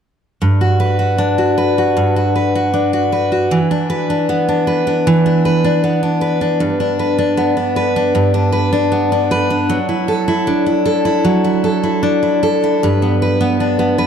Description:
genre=pop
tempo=78 BPM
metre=4/4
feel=straight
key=G major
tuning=A4 = 439 Hz
part: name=picked steel-string acoustic guitar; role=solo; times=0.4-14.1 s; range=G2 to B4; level=-13 LUFS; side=equal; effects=ping-pong delay
room=moderate concert hall reverb, RT60 1.9 s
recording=dark, warm production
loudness=-13 LUFS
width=side -8 dB against mid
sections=0.4-12.8 A section; 12.8-14.1 B section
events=none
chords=0.4 Gmaj7; 3.5 E5; 6.6 G; 9.7 Dadd9/F#; 12.8 G

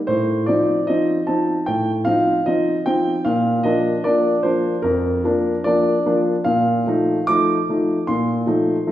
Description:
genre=classical-period piano sonatina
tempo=76 BPM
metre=4/4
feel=rubato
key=unclear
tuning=A4 = 440 Hz
part: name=warm concert grand piano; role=solo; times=0.1-8.9 s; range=F2 to D6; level=-16 LUFS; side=equal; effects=none
room=wet recital hall reverb, RT60 1.3 s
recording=heard from further back in the room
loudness=-16 LUFS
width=side -12 dB against mid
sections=0.0-8.9 A section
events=none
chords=0.1 F7/A; 3.3 Bb; 6.4 F7/Bb

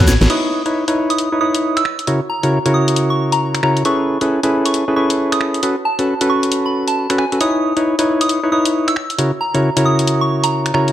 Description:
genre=UK garage, two-step garage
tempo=135 BPM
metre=4/4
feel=swing 62% on 16ths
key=C# minor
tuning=A4 = 440 Hz
part: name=percussive organ stab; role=stabs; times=0.0-10.9 s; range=C#3 to C#5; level=-16 LUFS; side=equal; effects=chorus
part: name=soft synth bell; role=melody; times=0.1-10.9 s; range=G#5 to G#6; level=-21 LUFS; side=right 2 dB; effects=chorus, phaser, tape echo
part: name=garage drum kit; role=drums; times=0.1-10.9 s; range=crash cymbal, finger snaps, hi-hat, snare drum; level=-21 LUFS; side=left 1 dB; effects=studio ambience
room=light reverb, digital ambience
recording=none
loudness=-14 LUFS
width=side -12 dB against mid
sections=0.3-10.9 A section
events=drum fill 0.0; band accent 0.2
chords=0.3 C#m9; 1.9 F#7/C#; 3.9 B13sus4; 5.6 A69; 7.4 C#m9; 9.0 F#7/C#

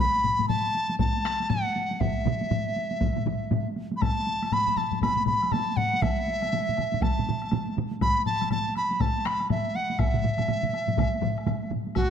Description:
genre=japanese traditional, taiko drum ensemble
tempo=120 BPM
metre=4/4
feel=swing 60% on 16ths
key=unclear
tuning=A4 = 440 Hz
part: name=large dizi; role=melody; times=0.0-12.1 s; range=F#4 to B5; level=-27 LUFS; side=equal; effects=none
part: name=solo taiko drums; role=percussion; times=0.2-12.1 s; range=none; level=-31 LUFS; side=right 2 dB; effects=none
part: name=taiko ensemble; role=percussion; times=0.2-12.1 s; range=none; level=-30 LUFS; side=left 4 dB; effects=none
part: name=taiko ensemble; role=percussion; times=1.0-12.1 s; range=none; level=-30 LUFS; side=equal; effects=none
part: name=taiko ensemble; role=percussion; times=2.0-11.9 s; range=none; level=-31 LUFS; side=right 5 dB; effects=none
part: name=woodblock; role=percussion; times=4.0-12.1 s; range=none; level=-44 LUFS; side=left 7 dB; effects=none
room=moderate concert hall reverb, RT60 2.0 s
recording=close, detailed microphones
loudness=-24 LUFS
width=side -8 dB against mid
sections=0.0-12.0 A section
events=speeding up 0.0-12.1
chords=none

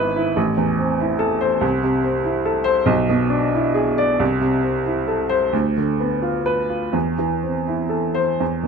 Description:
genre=classical, romantic character piece for solo piano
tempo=40-49 BPM (dotted quarters)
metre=6/8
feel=rubato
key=A minor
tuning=A4 = 440 Hz
part: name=clear upright piano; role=solo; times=0.0-8.7 s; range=G#1 to D5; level=-18 LUFS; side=equal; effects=none
room=moderate large studio reverb, RT60 1.4 s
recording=close, detailed microphones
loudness=-18 LUFS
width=side -5 dB against mid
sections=0.0-8.7 A section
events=none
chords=0.4 Am; 1.6 Am/C; 2.9 E7/B; 4.2 Am/C; 5.5 Bdim/D; 6.9 Am/E

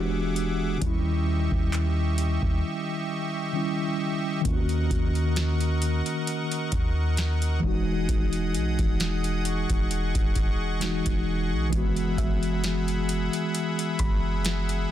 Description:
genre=contemporary R&B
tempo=66 BPM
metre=4/4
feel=swing 54% on 16ths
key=unclear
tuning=A4 = 440 Hz
part: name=mellow tine electric piano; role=accompaniment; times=0.0-14.9 s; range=D#3 to G4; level=-28 LUFS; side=left 1 dB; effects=medium stereo tremolo
part: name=pipe organ, strings celeste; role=sustained chords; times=0.0-14.9 s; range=G4 to D#6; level=-33 LUFS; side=equal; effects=sidechain pumping
part: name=clean 808-style bass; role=bass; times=0.0-14.9 s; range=E1 to D#2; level=-27 LUFS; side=equal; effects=none
part: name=booming analog drum machine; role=drums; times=0.4-14.9 s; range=handclaps, hi-hat, kick drum, snare drum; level=-28 LUFS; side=equal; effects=soft clipping on snare
part: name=soft round pluck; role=texture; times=12.2-14.9 s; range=E5 to B5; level=-42 LUFS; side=left 1 dB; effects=chorus, ping-pong delay
room=little or no reverb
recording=dense, heavily limited modern master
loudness=-24 LUFS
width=side -12 dB against mid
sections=0.0-4.5 A section; 4.5-14.9 B section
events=break 2.6-4.5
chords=0.0 E9; 0.8 D#7b9; 4.5 D#m7; 7.6 Emaj9; 11.7 F#9sus4

